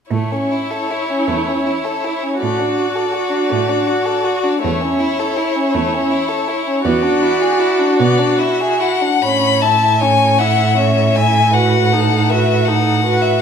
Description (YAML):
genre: classical, slow romantic movement for string quartet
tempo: 47-56 BPM (dotted quarters)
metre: 6/8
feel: rubato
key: A major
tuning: A4 = 437 Hz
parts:
  - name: rich violin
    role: melody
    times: 0.1-13.4 s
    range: C#5 to B5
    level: -18 LUFS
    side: left 6 dB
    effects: none
  - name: clear violin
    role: second line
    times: 0.1-13.4 s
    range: A3 to E5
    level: -20 LUFS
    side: left 2 dB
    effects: none
  - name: rich viola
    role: accompaniment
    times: 0.1-13.4 s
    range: C#4 to F#4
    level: -19 LUFS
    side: right 4 dB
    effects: none
  - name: clear cello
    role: bass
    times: 0.1-13.4 s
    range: E2 to B2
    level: -19 LUFS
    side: right 4 dB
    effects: none
room: wet recital hall reverb, RT60 1.3 s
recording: minimal, uncompressed stereo recording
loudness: -13 LUFS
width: side -7 dB against mid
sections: 0.1-9.2 A section; 9.2-13.4 B section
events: none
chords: 0.1 A; 2.4 D/A; 4.6 A/E; 6.8 E7sus2; 9.2 A; 11.5 B7/A